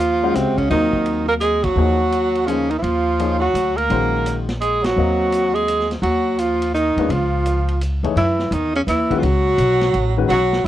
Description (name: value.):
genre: modal jazz.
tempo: 169 BPM.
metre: 3/4.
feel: swing 65% on 8ths.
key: Eb dorian.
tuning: A4 = 440 Hz.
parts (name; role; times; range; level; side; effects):
mellow tenor saxophone; melody; 0.0-10.7 s; C4 to Bb4; -19 LUFS; equal; none.
bright tenor saxophone; second line; 0.0-10.7 s; C3 to Bb3; -25 LUFS; right 9 dB; none.
upright bass; bass; 0.0-10.7 s; A1 to F#2; -21 LUFS; equal; none.
vintage drum kit; drums; 0.0-10.6 s; hi-hat, kick drum, ride cymbal, snare drum; -32 LUFS; equal; none.
warm upright piano; accompaniment; 0.2-10.3 s; Eb3 to F5; -24 LUFS; left 8 dB; none.
room: small room ambience.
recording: dry, close 1970s-style studio recording.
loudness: -16 LUFS.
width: side -13 dB against mid.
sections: 0.0-8.2 A section; 8.2-10.7 B section.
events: band accent 1.6, 4.8.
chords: 0.0 Ebm11; 7.1 Db; 8.2 F#7sus4.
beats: 0.35 | 0.70 1.06 1.41 | 1.77 2.12 2.48 | 2.84 3.19 3.55 | 3.90 4.26 4.61 | 4.97 5.32 5.68 | 6.03 6.39 6.74 | 7.10 7.45 7.81 | 8.16 8.52 8.88 | 9.23 9.59 9.94 | 10.29 10.65.